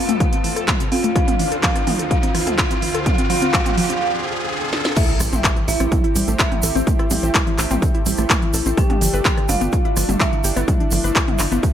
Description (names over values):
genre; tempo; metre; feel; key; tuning
melodic techno; 126 BPM; 4/4; straight; A minor; A4 = 443 Hz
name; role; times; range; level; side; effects
expressive synth lead; melody; 0.0-11.7 s; E4 to G4; -26 LUFS; equal; wide subtle chorus, sidechain pumping, tape echo
dark detuned synth bell; second line; 0.0-11.7 s; E5 to G5; -27 LUFS; right 1 dB; chorus, phaser, sidechain pumping, tape echo
lush unison pad; sustained chords; 0.0-11.7 s; D2 to A4; -30 LUFS; equal; chorus, sidechain pumping
riser and impact; sound effects; 0.0-6.9 s; none; -27 LUFS; equal; none
warbly dusty pluck; arpeggios; 0.1-11.7 s; C3 to C5; -25 LUFS; equal; chorus, sidechain pumping, tape echo
techno drum kit; drums; 0.1-11.7 s; crash cymbal, handclaps, hi-hat, rim click, snare drum, toms; -22 LUFS; equal; none
electronic kick drum; drums; 0.2-11.7 s; none; -20 LUFS; equal; none
egg shaker; percussion; 5.0-11.7 s; none; -28 LUFS; right 3 dB; none
tight sequencer bass; bass; 5.2-11.6 s; G1 to A1; -22 LUFS; equal; sidechain pumping
room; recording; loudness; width
light reverb; none; -16 LUFS; side -10 dB against mid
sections
0.0-5.0 A section; 5.0-11.7 B section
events
build-up 0.0-5.0; riser 0.0-5.0; filter sweep on synth arpeggio sound 0.0-5.0; filter sweep on analog synth lead 0.0-5.0; filter sweep on synth bell 0.0-5.0; break 4.0-5.0; drum fill 4.7; drop 5.0-11.7; impact 5.0-6.9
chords
0.0 Fmaj7; 1.2 Dm7; 5.0 Am7; 8.8 Gsus2